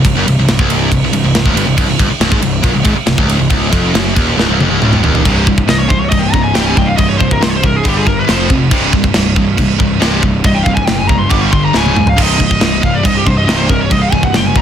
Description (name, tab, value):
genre	heavy metal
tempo	138 BPM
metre	4/4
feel	straight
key	C minor, C phrygian from 5.3 s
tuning	A4 = 443 Hz
part	high-gain distorted guitar	riff	0.0-14.6 s	C2 to G3	-14 LUFS	equal	distortion
part	fuzz picked electric bass	bass	0.0-14.6 s	C1 to Bb1	-17 LUFS	equal	overdrive
part	tight metal drum kit	drums	0.0-14.6 s	crash cymbal, kick drum, ride cymbal, snare drum, toms	-14 LUFS	equal	none
part	high-gain lead guitar	melody	5.7-14.6 s	G4 to D6	-17 LUFS	left 1 dB	distortion
room	small room ambience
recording	dense, heavily limited modern master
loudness	-10 LUFS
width	side -9 dB against mid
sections	0.0-5.3 A section; 5.3-14.6 B section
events	drum fill 4.4-5.3, 11.8-12.2; lead electric guitar solo 5.3-14.6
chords	0.0 Cm; 5.3 C5; 7.9 G5; 8.3 F5; 8.7 C5; 11.3 G5; 11.8 Db5; 12.2 Cm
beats	| 0.03 0.47 0.91 1.34 | 1.77 2.21 2.64 3.08 | 3.51 3.95 4.38 4.82 | 5.25 5.69 6.12 6.55 | 6.99 7.42 7.86 8.29 | 8.72 9.16 9.59 10.03 | 10.46 10.89 11.32 11.76 | 12.19 12.62 13.05 13.49 | 13.92 14.35